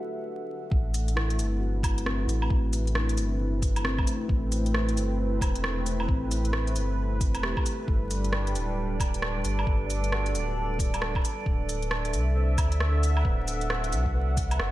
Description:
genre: future garage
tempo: 134 BPM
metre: 4/4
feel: swing 61% on 16ths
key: A dorian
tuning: A4 = 439 Hz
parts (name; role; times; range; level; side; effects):
- muted felt-like synth keys; accompaniment; 0.0-14.7 s; A3 to F#5; -37 LUFS; left 2 dB; chorus, sidechain pumping, analog delay
- dark analog pad; sustained chords; 0.0-14.7 s; G3 to F#5; -33 LUFS; right 1 dB; chorus, sidechain pumping
- warm sub bass; bass; 0.7-14.7 s; D1 to D2; -27 LUFS; equal; sidechain pumping
- electronic kick drum; drums; 0.7-14.5 s; none; -27 LUFS; equal; none
- organic electronic drum kit; drums; 0.9-14.7 s; cabasa, hi-hat, rim click, woodblock; -33 LUFS; right 1 dB; low-pass filter on hats, low-pass filter on perc, low-pass filter on snare, low-pass filter on room
- drifting glass-harmonics texture; texture; 8.6-14.7 s; D5; -40 LUFS; right 7 dB; chorus, built-in reverb
room: light reverb, digital ambience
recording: vinyl crackle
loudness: -24 LUFS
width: side -16 dB against mid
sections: 0.7-14.7 A section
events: break 0.0-0.7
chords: 0.0 D; 0.7 Am7; 7.9 Gmaj9; 11.5 D7

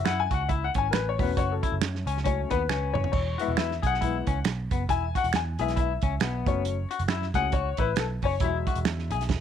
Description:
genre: uptempo 1960s-style soul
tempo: 136 BPM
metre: 4/4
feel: swing 59% on 8ths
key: unclear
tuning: A4 = 440 Hz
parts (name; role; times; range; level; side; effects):
- warm upright piano; accompaniment; 0.0-9.4 s; E3 to G#5; -29 LUFS; left 9 dB; none
- electric guitar through a small old amp; riff; 0.0-9.2 s; B3 to G#4; -33 LUFS; left 10 dB; none
- vintage muted picked electric bass; bass; 0.0-9.4 s; E1 to F#2; -30 LUFS; right 1 dB; none
- warm soul drum kit; drums; 0.1-9.4 s; crash cymbal, hi-hat, kick drum, snare drum, toms; -29 LUFS; right 4 dB; none
- finger snap; percussion; 0.1-9.0 s; none; -33 LUFS; right 11 dB; none
room: light reverb, small room ambience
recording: 1960s-style stereo with parts hard left and right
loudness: -24 LUFS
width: side -9 dB against mid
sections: 0.0-9.4 A section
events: upright piano solo 0.0-9.4; drum fill 2.7-3.1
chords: 0.0 F#m; 3.1 E; 6.4 F#m; 8.4 Eadd9

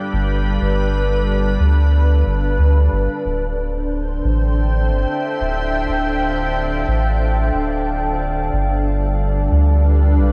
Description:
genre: ambient dub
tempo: 91 BPM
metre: 4/4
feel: swing 54% on 16ths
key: D dorian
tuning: A4 = 436 Hz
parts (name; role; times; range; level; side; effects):
- soft additive organ-like pad; sustained chords; 0.0-10.3 s; G3 to G5; -23 LUFS; equal; ensemble chorus, built-in reverb
- soft dub sub bass; bass; 0.1-10.3 s; D1 to D2; -19 LUFS; equal; none
room: moderate plate reverb, RT60 3.5 s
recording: dreamy mix soaked in reverb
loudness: -18 LUFS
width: mono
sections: 0.0-10.3 A section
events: none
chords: 0.0 G7; 3.3 Dm11; 8.5 G7

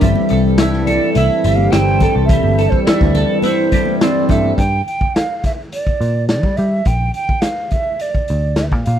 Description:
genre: psychedelic rock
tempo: 105 BPM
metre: 4/4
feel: straight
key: unclear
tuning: A4 = 440 Hz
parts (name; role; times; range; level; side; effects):
- hollow concert flute; melody; 0.0-9.0 s; C5 to G5; -20 LUFS; right 3 dB; slapback echo
- percussive tonewheel organ; sustained chords; 0.0-4.5 s; E3 to A4; -24 LUFS; right 4 dB; slow rotary speaker, chorus vibrato
- twelve-string electric guitar; riff; 0.0-4.6 s; G3 to A4; -16 LUFS; left 1 dB; phaser, double-tracked left and right
- vintage muted picked electric bass; bass; 0.0-9.0 s; G1 to G3; -16 LUFS; equal; none
- hand-pumped harmonium; drone; 0.0-4.6 s; G2 to G3; -27 LUFS; left 4 dB; none
- raw garage drum kit; drums; 0.0-9.0 s; hi-hat, kick drum, snare drum; -19 LUFS; equal; none
- congas; percussion; 0.0-4.6 s; none; -26 LUFS; left 2 dB; none
room: little or no reverb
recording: dry, close 1970s-style studio recording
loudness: -13 LUFS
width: side -10 dB against mid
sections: 0.0-4.6 A section; 4.6-9.0 B section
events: none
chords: 0.0 Am/G; 4.6 Gm; 6.9 Bb

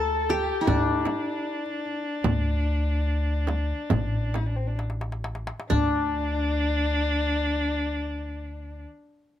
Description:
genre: Arabic maqam ensemble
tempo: 64-79 BPM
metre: 4/4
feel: straight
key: unclear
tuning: A4 = 440 Hz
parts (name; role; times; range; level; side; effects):
- qanun; melody; 0.0-8.8 s; D4 to A4; -27 LUFS; left 2 dB; none
- dark violin; second line; 0.0-8.8 s; C4 to A4; -30 LUFS; left 2 dB; none
- upright bass; bass; 0.0-8.8 s; A1 to D2; -28 LUFS; equal; none
- frame drum; percussion; 0.3-6.1 s; none; -29 LUFS; right 5 dB; none
- darbuka; percussion; 0.7-6.1 s; none; -31 LUFS; left 2 dB; none
room: little or no reverb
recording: close, detailed microphones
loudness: -24 LUFS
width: side -11 dB against mid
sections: 0.0-5.7 A section; 5.7-9.4 B section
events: slowing down 0.0-5.7; drum fill 4.8-5.7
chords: none

